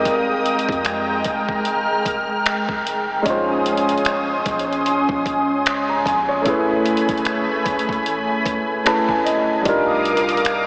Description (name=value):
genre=contemporary R&B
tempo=75 BPM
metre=4/4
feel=swing 58% on 16ths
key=Bb dorian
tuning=A4 = 444 Hz
part: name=warm baby grand piano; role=accompaniment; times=0.0-10.7 s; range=G3 to Bb5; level=-23 LUFS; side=equal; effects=none
part: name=lush unison pad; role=sustained chords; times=0.0-10.7 s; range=Ab3 to F6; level=-23 LUFS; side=equal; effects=chorus, phaser
part: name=soft 808-style bass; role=bass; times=0.0-10.7 s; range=Fb1 to F2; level=-41 LUFS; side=equal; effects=none
part: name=dusty soul sampler-style drum kit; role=drums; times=0.1-10.7 s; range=finger snaps, hi-hat, kick drum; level=-29 LUFS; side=equal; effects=vintage 12-bit sampler grit
room=wet huge ambient reverb, RT60 8.1 s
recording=dreamy mix soaked in reverb, small speaker sound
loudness=-20 LUFS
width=mono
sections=0.0-10.7 A section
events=grand piano fill 8.5-9.7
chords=0.0 Fm11; 3.3 Bbm11; 6.5 Gbm11; 9.7 Cm11